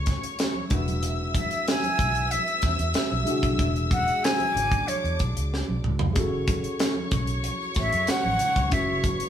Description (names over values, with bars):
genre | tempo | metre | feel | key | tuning
lush 1970s-style soul | 94 BPM | 4/4 | straight | unclear | A4 = 440 Hz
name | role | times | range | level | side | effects
warm studio string section | second line | 0.0-9.3 s | D4 to E6 | -31 LUFS | left 2 dB | none
mellow tine electric piano | accompaniment | 0.0-9.3 s | G#3 to B4 | -32 LUFS | left 1 dB | phaser
vintage muted fingered electric bass | bass | 0.0-9.2 s | E1 to F#2 | -29 LUFS | equal | none
tight funk drum kit | drums | 0.1-9.3 s | hi-hat, kick drum, snare drum, toms | -27 LUFS | equal | none
congas | percussion | 0.5-9.2 s | none | -37 LUFS | right 4 dB | none
breathy concert flute | melody | 1.4-9.0 s | C#5 to G#5 | -26 LUFS | equal | none
tambourine | percussion | 6.2-9.2 s | none | -45 LUFS | right 4 dB | none
room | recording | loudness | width
moderate stone room reverb, RT60 1.1 s | band playing live in one room | -22 LUFS | side -9 dB against mid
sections
0.0-9.3 A section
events
flute solo 0.0-9.3; drum fill 5.5-6.2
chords
0.0 F#m7; 0.7 E7; 6.2 F#m7